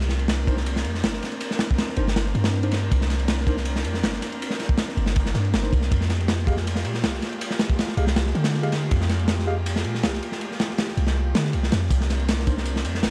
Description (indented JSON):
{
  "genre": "drum and bass, jungle",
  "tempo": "160 BPM",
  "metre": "4/4",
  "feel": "straight",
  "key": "unclear",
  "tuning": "A4 = 442 Hz",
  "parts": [
    { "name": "airy breathy pad", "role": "sustained chords", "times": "0.0-13.1 s", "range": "Ab3 to Bb4", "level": "-35 LUFS", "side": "equal", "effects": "chorus" },
    { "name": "warm 808-style bass", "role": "bass", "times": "0.0-13.1 s", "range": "G1 to D3", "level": "-26 LUFS", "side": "equal", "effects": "tube saturation" },
    { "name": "crunchy breakbeat drum kit", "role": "drums", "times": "0.0-13.1 s", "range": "kick drum, ride cymbal, snare drum", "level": "-27 LUFS", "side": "equal", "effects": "none" },
    { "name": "tine electric piano", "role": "stabs", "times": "0.5-9.5, 12.5 s", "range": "D4 to F5", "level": "-35 LUFS", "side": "equal", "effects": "medium tremolo, vintage 12-bit sampler grit, dub echo" },
    { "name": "electronic tambourine and snare drum", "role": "drums", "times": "11.9-13.1 s", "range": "none", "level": "-42 LUFS", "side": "equal", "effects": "none" }
  ],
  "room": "small room ambience",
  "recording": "dry, gritty hardware recording, vinyl crackle",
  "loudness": "-24 LUFS",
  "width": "mono",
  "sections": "0.0-13.1 A section",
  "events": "none",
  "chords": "0.0 C7sus2; 5.9 Fmadd9; 11.9 C7sus2"
}